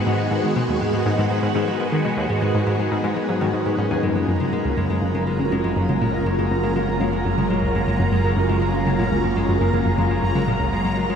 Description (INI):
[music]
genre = ambient, sequencer-driven space music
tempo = 121 BPM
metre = 4/4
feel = straight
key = unclear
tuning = A4 = 440 Hz
[part]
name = phased string machine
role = sustained chords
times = 0.0-11.2 s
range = C#3 to F#4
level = -22 LUFS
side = right 1 dB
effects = ensemble chorus, phaser
[part]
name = concert harp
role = arpeggios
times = 0.0-11.2 s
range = G#2 to G#4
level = -27 LUFS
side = left 5 dB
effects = auto-pan, tape echo
[part]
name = analog pluck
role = riff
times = 0.1-11.2 s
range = C#2 to D#3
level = -23 LUFS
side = equal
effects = chorus, tape echo
[part]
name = analog drone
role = bass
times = 4.0-11.2 s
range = F#1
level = -29 LUFS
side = equal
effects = chorus
[part]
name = bubbling stepped-filter texture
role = texture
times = 4.0-11.2 s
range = A#5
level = -29 LUFS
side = right 1 dB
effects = chorus, built-in reverb
[sound]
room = wet shimmer reverb, RT60 8.3 s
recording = none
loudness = -18 LUFS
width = side -7 dB against mid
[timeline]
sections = 0.0-4.0 A section; 4.0-11.2 A section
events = filter sweep on synth arpeggio sound 4.0-11.2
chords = 0.0 G#m7; 4.0 F#maj7